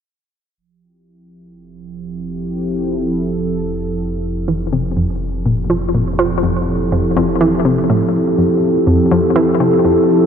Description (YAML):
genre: ambient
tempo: 123 BPM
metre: 4/4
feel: straight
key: F major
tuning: A4 = 440 Hz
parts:
  - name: sweeping resonant pad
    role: sustained chords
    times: 0.6-10.3 s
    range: F3 to A4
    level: -16 LUFS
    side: equal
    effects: chorus
  - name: round analog bass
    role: bass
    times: 0.6-8.4 s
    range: F1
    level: -26 LUFS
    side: equal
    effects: none
  - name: analog pluck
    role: riff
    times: 4.5-10.0 s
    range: F2 to F3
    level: -16 LUFS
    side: left 1 dB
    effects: chorus, ping-pong delay
room: wet cathedral reverb, RT60 6.4 s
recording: in a vast, echoing space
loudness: -14 LUFS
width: side -8 dB against mid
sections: 0.6-8.4 A section; 8.4-10.3 B section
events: fade-in on analog synth bass 0.6-8.4; filter sweep on analog synth pad 0.6-8.4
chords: 0.6 Fmaj7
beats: | 0.58 1.07 1.55 2.04 | 2.53 3.02 3.50 3.99 | 4.48 4.97 5.46 5.94 | 6.43 6.92 7.41 7.89 | 8.38 8.87 9.36 9.85